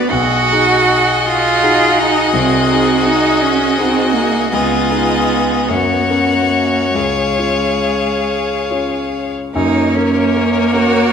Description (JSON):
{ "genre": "classical, slow romantic movement for piano quintet", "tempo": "45-56 BPM (dotted quarters)", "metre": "6/8", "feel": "rubato", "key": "F# major", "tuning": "A4 = 440 Hz", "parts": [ { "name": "clear violin", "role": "melody", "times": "0.0-11.1 s", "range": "C#5 to F#5", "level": "-20 LUFS", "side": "left 6 dB", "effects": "none" }, { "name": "clear violin", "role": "second line", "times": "0.0-11.1 s", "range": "G#4 to C#5", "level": "-20 LUFS", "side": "left 4 dB", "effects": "none" }, { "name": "rich cello", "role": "second line", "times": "0.0-11.1 s", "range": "G#3 to F#4", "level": "-16 LUFS", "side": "right 4 dB", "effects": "none" }, { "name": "clear viola", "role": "accompaniment", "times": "0.0-11.1 s", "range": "A#3 to G#4", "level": "-20 LUFS", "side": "right 2 dB", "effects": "none" }, { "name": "warm grand piano", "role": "accompaniment", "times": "0.0-11.1 s", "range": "B1 to C#5", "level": "-19 LUFS", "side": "left 2 dB", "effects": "none" } ], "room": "wet recital hall reverb, RT60 1.7 s", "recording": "none", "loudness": "-12 LUFS", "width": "side -7 dB against mid", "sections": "0.0-9.6 A section; 9.6-11.1 B section", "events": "none", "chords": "0.1 B6; 2.3 G#7/B#; 4.5 C#9; 5.7 F#; 7.0 C#; 9.6 F#", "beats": "| 0.11 1.25 | 2.34 3.41 | 4.53 5.69 | 6.95 8.27 | 9.55 10.73" }